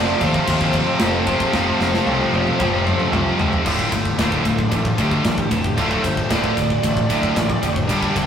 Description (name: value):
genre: heavy metal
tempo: 113 BPM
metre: 4/4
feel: straight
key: D minor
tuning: A4 = 444 Hz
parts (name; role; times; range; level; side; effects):
- high-gain lead guitar; melody; 0.0-8.3 s; D4 to G5; -26 LUFS; equal; distortion, digital delay
- warm studio string section; sustained chords; 0.0-3.6 s; C4 to F5; -28 LUFS; right 1 dB; none
- distorted electric guitar; riff; 0.0-8.3 s; D2 to G4; -25 LUFS; equal; overdrive
- high-gain distorted guitar; riff; 0.0-8.3 s; D2 to G3; -25 LUFS; left 4 dB; distortion
- scooped high-gain guitar; riff; 0.0-8.3 s; D2 to G3; -24 LUFS; right 3 dB; distortion
- growling picked electric bass; bass; 0.0-8.3 s; D1 to Eb2; -24 LUFS; left 1 dB; overdrive
- tight metal drum kit; drums; 0.2-8.3 s; crash cymbal, kick drum, ride cymbal, snare drum, toms; -23 LUFS; equal; none
room: moderate stone room reverb, RT60 1.2 s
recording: rough rehearsal-room recording, warm saturation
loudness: -16 LUFS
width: side -8 dB against mid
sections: 0.0-3.7 A section; 3.7-8.3 B section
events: drum fill 1.5-3.7; lead electric guitar solo 3.7-8.3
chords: 0.0 F; 3.7 Dm